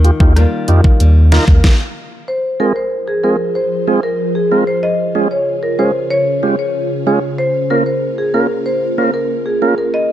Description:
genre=dancehall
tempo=94 BPM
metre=4/4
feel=straight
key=F minor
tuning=A4 = 440 Hz
part: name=tonewheel organ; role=accompaniment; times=0.0-9.7 s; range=Ab3 to Bb4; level=-17 LUFS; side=right 3 dB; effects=overdrive, slow rotary speaker
part: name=flamenco guitar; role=arpeggios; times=0.0-2.2 s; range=Eb3 to F4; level=-21 LUFS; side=left 4 dB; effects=none
part: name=warm sub bass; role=bass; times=0.0-1.6 s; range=Eb2 to F2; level=-9 LUFS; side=equal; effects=none
part: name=pop drum kit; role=drums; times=0.0-1.8 s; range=hi-hat, kick drum, rim click, snare drum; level=-11 LUFS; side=equal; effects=overdrive
part: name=marimba with medium hard mallets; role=melody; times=2.3-10.1 s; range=Ab4 to Eb5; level=-16 LUFS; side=left 1 dB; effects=ping-pong delay
part: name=ethereal airy pad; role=sustained chords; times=3.0-10.1 s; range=Db3 to C5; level=-21 LUFS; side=right 1 dB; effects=ensemble chorus, built-in reverb, sidechain pumping
room=digital ambience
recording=none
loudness=-12 LUFS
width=side -12 dB against mid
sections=0.0-2.3 A section; 2.3-10.1 B section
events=stop 1.6-2.3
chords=0.0 Ebadd9; 2.3 Fm; 4.8 Db; 7.4 Bbm

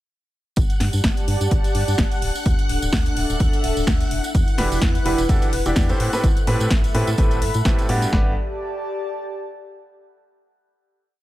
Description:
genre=piano house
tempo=127 BPM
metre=4/4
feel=swing 55% on 16ths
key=G major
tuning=A4 = 441 Hz
part: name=string machine, violins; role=sustained chords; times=0.6-8.1 s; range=F#5 to F#6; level=-31 LUFS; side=left 1 dB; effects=ensemble chorus, sidechain pumping
part: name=organ-like FM bass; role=bass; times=0.6-8.3 s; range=D1 to A2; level=-23 LUFS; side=equal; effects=sidechain pumping
part: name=house drum kit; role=drums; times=0.6-8.2 s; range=kick drum, snare drum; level=-20 LUFS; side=equal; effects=small room ambience
part: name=house drum kit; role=drums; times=0.6-8.1 s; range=hi-hat, snare drum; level=-27 LUFS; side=equal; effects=small room ambience
part: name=tambourine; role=percussion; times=0.6-8.1 s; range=none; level=-35 LUFS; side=right 4 dB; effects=none
part: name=airy breathy pad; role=texture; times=0.9-10.0 s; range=D4 to B5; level=-28 LUFS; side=equal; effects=chorus, sidechain pumping
part: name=bright baby grand piano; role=riff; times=4.6-8.3 s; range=G2 to D5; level=-24 LUFS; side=equal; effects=sidechain pumping, dub echo
room=digital ambience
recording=none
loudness=-18 LUFS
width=side -15 dB against mid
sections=0.6-8.1 groove; 8.1-10.0 final chord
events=none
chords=0.6 G5; 2.2 Dadd9; 4.1 Em9; 6.0 Am9; 8.1 G

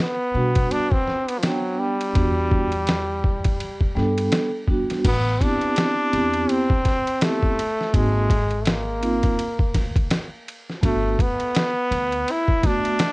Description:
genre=hip hop, jazz-hop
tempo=83 BPM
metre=4/4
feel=swing 59% on 16ths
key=E minor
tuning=A4 = 440 Hz
part: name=brilliant trombone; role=melody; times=0.0-13.1 s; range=F3 to E4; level=-24 LUFS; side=equal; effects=analog delay
part: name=trip hop sampler-style drum kit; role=drums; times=0.0-13.1 s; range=crash cymbal, hi-hat, kick drum, ride cymbal, snare drum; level=-22 LUFS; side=equal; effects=none
part: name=vibraphone with soft mallets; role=accompaniment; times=0.3-12.9 s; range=G3 to G5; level=-24 LUFS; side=right 1 dB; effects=none
part: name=upright bass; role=bass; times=0.3-12.2 s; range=G1 to B2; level=-26 LUFS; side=equal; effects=none
room=light reverb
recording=cassette tape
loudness=-19 LUFS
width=side -22 dB against mid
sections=0.0-5.0 A section; 5.0-13.1 B section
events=none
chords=0.0 Em9; 5.0 Am9; 7.9 G#add9; 10.8 Gmaj9

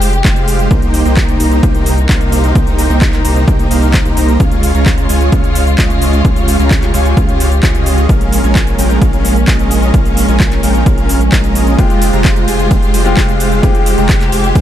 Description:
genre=EDM, festival progressive house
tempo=130 BPM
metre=4/4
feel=straight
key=F minor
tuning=A4 = 441 Hz
part: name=rich studio string section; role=sustained chords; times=0.0-14.6 s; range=C3 to G4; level=-18 LUFS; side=equal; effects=sidechain pumping
part: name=dense compressed supersaw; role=riff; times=0.0-14.6 s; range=Ab3 to Bb5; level=-17 LUFS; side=right 1 dB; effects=sidechain pumping, ping-pong delay
part: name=saturated sub bass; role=bass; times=0.0-14.6 s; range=F1 to Db2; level=-14 LUFS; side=equal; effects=sidechain pumping
part: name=house drum kit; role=drums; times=0.0-14.6 s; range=handclaps, hi-hat, ride cymbal, shaker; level=-20 LUFS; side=equal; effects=overdrive
part: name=electronic kick drum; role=drums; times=0.2-14.6 s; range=none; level=-13 LUFS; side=equal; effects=overdrive
part: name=bright grand piano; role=accompaniment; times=11.8-14.6 s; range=Ab3 to G4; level=-19 LUFS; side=left 4 dB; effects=sidechain pumping, ping-pong delay
room=light reverb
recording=none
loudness=-9 LUFS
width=side -11 dB against mid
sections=0.0-14.6 A section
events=none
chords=0.0 Fmadd9; 0.7 Cm7; 4.4 Db; 8.1 Bbm7; 11.8 Fmadd9

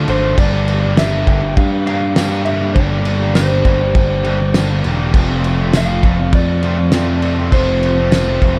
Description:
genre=indie rock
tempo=101 BPM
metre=4/4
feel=straight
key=unclear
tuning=A4 = 440 Hz
part: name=electric guitar through a small old amp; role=melody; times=0.0-8.6 s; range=C5 to F5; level=-23 LUFS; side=equal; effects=none
part: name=string machine, violas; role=sustained chords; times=0.0-8.6 s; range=F4 to Bb5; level=-35 LUFS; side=equal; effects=none
part: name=crunchy overdriven guitar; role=riff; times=0.0-8.6 s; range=F2 to D4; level=-25 LUFS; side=equal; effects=subtle chorus
part: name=fuzz guitar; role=riff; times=0.0-8.6 s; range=F2 to G4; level=-25 LUFS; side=equal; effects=distortion
part: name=growling picked electric bass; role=bass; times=0.0-8.6 s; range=E1 to G2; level=-20 LUFS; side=equal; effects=overdrive
part: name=cloth-damped thuddy drum kit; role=drums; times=0.1-8.6 s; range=crash cymbal, kick drum, snare drum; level=-19 LUFS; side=equal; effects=none
part: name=tambourine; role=percussion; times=1.0-8.3 s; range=none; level=-38 LUFS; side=equal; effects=none
room=light reverb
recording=dark, warm production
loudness=-15 LUFS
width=mono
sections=0.0-8.6 A section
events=none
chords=0.4 Gm; 5.1 F6

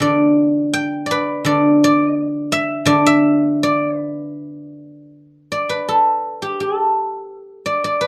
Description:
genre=chinese traditional, Chinese solo plucked strings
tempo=79-87 BPM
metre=2/4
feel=rubato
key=D zhi mode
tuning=A4 = 441 Hz
part: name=guzheng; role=solo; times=0.0-8.1 s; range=D3 to G5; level=-18 LUFS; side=equal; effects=none
room=light reverb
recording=none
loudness=-17 LUFS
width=mono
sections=0.0-4.4 A section; 4.4-8.1 B section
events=none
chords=none

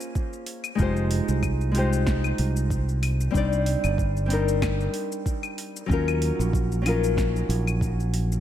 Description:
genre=sunset chillout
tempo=94 BPM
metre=4/4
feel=swing 55% on 16ths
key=unclear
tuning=A4 = 440 Hz
part: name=nylon-string guitar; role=accompaniment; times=0.0-8.4 s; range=Gb3 to D5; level=-27 LUFS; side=moving between left 7 dB and right 3 dB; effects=auto-pan, dub echo
part: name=deep house drum kit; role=drums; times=0.0-8.4 s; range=claves, hi-hat, shaker, snare drum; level=-34 LUFS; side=left 2 dB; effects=overdrive, small room ambience
part: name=electronic kick drum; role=drums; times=0.2-8.0 s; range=none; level=-27 LUFS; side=right 1 dB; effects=small room ambience
part: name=fingered electric bass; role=bass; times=0.8-8.4 s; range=F1 to Eb2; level=-24 LUFS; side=right 1 dB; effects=none
room=light reverb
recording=echo-heavy mix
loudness=-22 LUFS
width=side -11 dB against mid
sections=0.0-8.4 A section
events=none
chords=0.0 Bbm9; 0.8 Fm9; 3.3 Cm9; 5.9 Ebm9

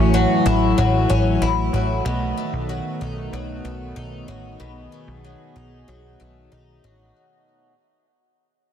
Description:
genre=dream pop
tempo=94 BPM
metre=4/4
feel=straight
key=unclear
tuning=A4 = 440 Hz
part: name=warm analog pad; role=sustained chords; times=0.0-7.1 s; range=D#3 to G#4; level=-25 LUFS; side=right 1 dB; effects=chorus
part: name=picked twelve-string acoustic guitar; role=arpeggios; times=0.0-7.7 s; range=A2 to E4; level=-23 LUFS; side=left 3 dB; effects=lush chorus, ping-pong delay
part: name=plucky analog bass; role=bass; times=0.0-7.1 s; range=A1 to B1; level=-22 LUFS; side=equal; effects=none
room=light reverb, small room ambience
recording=dense, heavily limited modern master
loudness=-18 LUFS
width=side -9 dB against mid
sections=0.0-7.2 A section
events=fade-out 0.0-7.2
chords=0.0 F#m7; 2.1 B7

